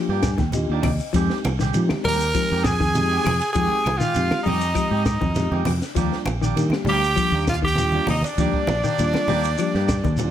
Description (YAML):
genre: afrobeat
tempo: 100 BPM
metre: 4/4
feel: straight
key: F dorian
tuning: A4 = 440 Hz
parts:
  - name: mellow tine electric piano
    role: accompaniment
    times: 0.0-10.3 s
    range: G3 to Ab5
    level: -29 LUFS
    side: left 2 dB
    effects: fast stereo tremolo
  - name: clean electric guitar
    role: arpeggios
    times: 0.0-10.2 s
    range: C3 to G3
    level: -28 LUFS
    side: left 8 dB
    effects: none
  - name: clean electric guitar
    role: stabs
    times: 0.1-9.9 s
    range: Eb3 to G4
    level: -31 LUFS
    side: right 12 dB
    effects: none
  - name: fingered electric bass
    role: bass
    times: 0.1-10.3 s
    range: Bb1 to F3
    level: -24 LUFS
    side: equal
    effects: none
  - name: compact cocktail drum kit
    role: drums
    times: 0.2-10.3 s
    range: hi-hat, kick drum, ride cymbal, snare drum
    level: -28 LUFS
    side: equal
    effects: none
  - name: claves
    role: percussion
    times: 0.2-10.0 s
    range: none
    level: -38 LUFS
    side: left 9 dB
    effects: none
  - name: shekere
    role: percussion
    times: 0.2-10.3 s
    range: none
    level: -30 LUFS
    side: left 1 dB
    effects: none
  - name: congas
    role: percussion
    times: 0.4-10.3 s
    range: none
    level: -28 LUFS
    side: right 2 dB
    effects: none
  - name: raspy tenor saxophone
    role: melody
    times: 2.0-10.3 s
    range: D4 to Bb4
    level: -24 LUFS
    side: equal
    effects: slapback echo
  - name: brilliant trumpet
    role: second line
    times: 2.1-10.3 s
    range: D5 to Bb5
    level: -29 LUFS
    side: right 5 dB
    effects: none
room: light reverb, studio ambience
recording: none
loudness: -19 LUFS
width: side -10 dB against mid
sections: 0.0-10.3 A section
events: tine electric piano fill 0.0-1.1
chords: 0.0 Ebmaj9; 1.1 Fm9; 6.0 Ebmaj9